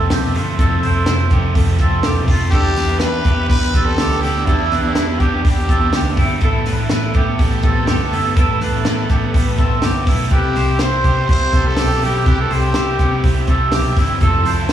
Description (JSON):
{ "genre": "jangly indie pop", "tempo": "123 BPM", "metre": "4/4", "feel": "straight", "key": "unclear", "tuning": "A4 = 440 Hz", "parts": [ { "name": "chorused retro synth keys", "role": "accompaniment", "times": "0.0-14.7 s", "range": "B3 to B4", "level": "-28 LUFS", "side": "left 1 dB", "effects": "tremolo, plate reverb, slapback echo" }, { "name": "overdriven semi-hollow guitar", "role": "accompaniment", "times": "0.0-14.7 s", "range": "C3 to A4", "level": "-24 LUFS", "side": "right 7 dB", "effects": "plate reverb, slapback echo" }, { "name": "clean electric guitar", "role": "arpeggios", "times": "0.0-14.7 s", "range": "G3 to C5", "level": "-22 LUFS", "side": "equal", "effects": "lush chorus, plate reverb, slapback echo, analog delay" }, { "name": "vintage muted picked electric bass", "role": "bass", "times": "0.0-14.7 s", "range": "E1 to E2", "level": "-19 LUFS", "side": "equal", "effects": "none" }, { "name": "compact cocktail drum kit", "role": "drums", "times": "0.1-14.7 s", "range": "hi-hat, kick drum, snare drum", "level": "-18 LUFS", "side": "equal", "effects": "none" }, { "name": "growling trumpet", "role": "melody", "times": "2.5-6.1, 10.3-13.5 s", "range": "E4 to C5", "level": "-21 LUFS", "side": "left 1 dB", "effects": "plate reverb, slapback echo, analog delay" }, { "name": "rich studio violin section", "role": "second line", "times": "2.5-14.7 s", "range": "D4 to B4", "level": "-29 LUFS", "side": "equal", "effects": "plate reverb, slapback echo" } ], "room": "light reverb", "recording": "live gig heard through the venue's PA, recital hall reverb", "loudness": "-13 LUFS", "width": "side -10 dB against mid", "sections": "0.0-14.7 A section", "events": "none", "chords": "0.0 Fmaj7; 2.5 Em7; 10.3 C; 14.2 Fmaj7" }